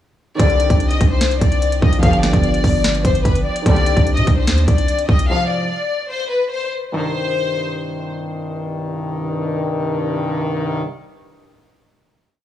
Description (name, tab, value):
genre	hip hop, trap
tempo	147 BPM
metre	4/4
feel	half-time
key	C harmonic minor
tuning	A4 = 440 Hz
part	rich studio violin section	melody	0.4-8.1 s	B4 to F5	-21 LUFS	left 4 dB	analog delay
part	warm baby grand piano	accompaniment	0.4-5.3 s	Eb3 to G4	-23 LUFS	right 4 dB	none
part	mellow brass ensemble	stabs	0.4-10.8 s	C2 to G3	-22 LUFS	left 1 dB	none
part	long sustained 808-style bass	bass	0.4-5.3 s	G1 to C3	-18 LUFS	equal	none
part	trap drum kit	drums	0.4-5.3 s	hi-hat, kick drum, snare drum	-17 LUFS	equal	vintage 12-bit sampler grit
room	small room ambience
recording	dry, gritty hardware recording, studio ambience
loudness	-15 LUFS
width	side -11 dB against mid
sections	0.4-6.9 hook; 6.9-10.2 final chord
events	none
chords	0.4 Cmadd9; 2.0 G7; 3.7 Cmadd9; 5.3 Ab6; 6.9 Cm